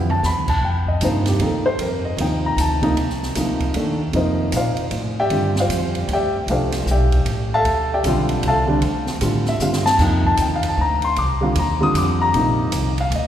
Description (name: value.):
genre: modal jazz.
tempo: 154 BPM.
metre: 3/4.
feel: swing 64% on 8ths.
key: unclear.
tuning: A4 = 440 Hz.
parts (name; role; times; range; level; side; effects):
dark concert grand piano; accompaniment; 0.0-13.3 s; Bb2 to Eb6; -19 LUFS; equal; none.
upright bass; bass; 0.0-13.3 s; A1 to Bb2; -22 LUFS; equal; none.
open jazz drum kit; drums; 0.1-13.2 s; crash cymbal, hi-hat, kick drum, ride cymbal, snare drum, toms; -27 LUFS; right 2 dB; none.
room: wet church reverb, RT60 3.2 s.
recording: recorded in a church or concert hall.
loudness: -17 LUFS.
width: side -10 dB against mid.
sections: 0.0-13.3 A section.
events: drum fill 0.0, 9.6-10.0.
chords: 0.0 G13sus4; 0.6 F13sus4; 5.3 G13sus4; 10.0 F13sus4.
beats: 0.23 | 0.62 1.01 1.40 | 1.79 2.19 2.58 | 2.97 3.36 3.75 | 4.14 4.53 4.92 | 5.31 5.70 6.09 | 6.48 6.87 7.26 | 7.65 8.04 8.43 | 8.82 9.21 9.61 | 9.99 10.38 10.77 | 11.16 11.55 11.94 | 12.33 12.72 13.11.